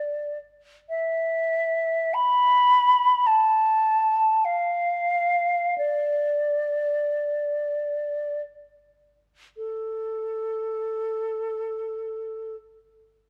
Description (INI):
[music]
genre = classical, free, expressive piece for unaccompanied flute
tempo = free time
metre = none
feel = none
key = unclear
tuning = A4 = 442 Hz
[part]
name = mellow hollow silver concert flute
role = solo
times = 0.0-12.6 s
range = A4 to B5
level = -24 LUFS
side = equal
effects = none
[sound]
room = moderate concert hall reverb, RT60 1.8 s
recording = close, detailed microphones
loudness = -24 LUFS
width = mono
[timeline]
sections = 0.0-9.5 A section; 9.5-13.3 B section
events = slowing down 0.0-9.5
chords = none